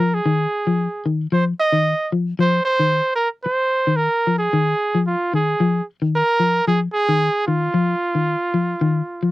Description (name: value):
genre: afrobeat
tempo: 112 BPM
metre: 4/4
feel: swing 53% on 16ths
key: F minor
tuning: A4 = 440 Hz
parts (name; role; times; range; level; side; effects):
- clear trumpet; melody; 0.0-9.3 s; F4 to Eb5; -19 LUFS; right 2 dB; none
- electric guitar at the edge of break-up; arpeggios; 0.0-9.3 s; Eb3 to F3; -19 LUFS; left 3 dB; none
room: little or no reverb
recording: dry, close 1970s-style studio recording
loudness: -17 LUFS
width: side -17 dB against mid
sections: 0.0-9.3 A section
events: none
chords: 0.0 Fm7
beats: 0.26 0.79 | 1.33 1.86 2.40 2.93 | 3.46 4.00 4.53 5.07 | 5.60 6.13 6.67 7.20 | 7.73 8.27 8.80